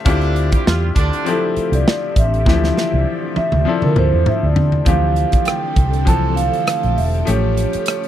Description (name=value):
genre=lush 1970s-style soul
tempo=100 BPM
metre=4/4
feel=swing 54% on 16ths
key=D minor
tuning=A4 = 441 Hz
part: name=bright concert grand piano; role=accompaniment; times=0.0-8.1 s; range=E3 to A4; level=-22 LUFS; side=left 7 dB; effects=none
part: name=string machine, full ensemble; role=sustained chords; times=0.0-8.1 s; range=D3 to E5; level=-28 LUFS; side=right 1 dB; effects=phaser, ensemble chorus
part: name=clear horn section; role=stabs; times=0.1-1.5 s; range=D3 to G4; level=-23 LUFS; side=right 4 dB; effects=none
part: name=vintage muted fingered electric bass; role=bass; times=0.1-7.8 s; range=E1 to D3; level=-17 LUFS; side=equal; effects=none
part: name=modern studio drum kit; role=drums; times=0.1-8.1 s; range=hi-hat, kick drum, rim click, snare drum, toms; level=-18 LUFS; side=equal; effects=none
part: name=vibraphone with soft mallets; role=melody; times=1.3-8.1 s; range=A4 to A5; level=-21 LUFS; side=right 3 dB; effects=none
room=small room ambience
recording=dry, close 1970s-style studio recording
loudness=-14 LUFS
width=side -11 dB against mid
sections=0.0-4.9 A section; 4.9-8.1 B section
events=vibraphone solo 0.0-4.9; drum fill 2.5-4.9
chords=0.1 Dm11; 7.3 A7b13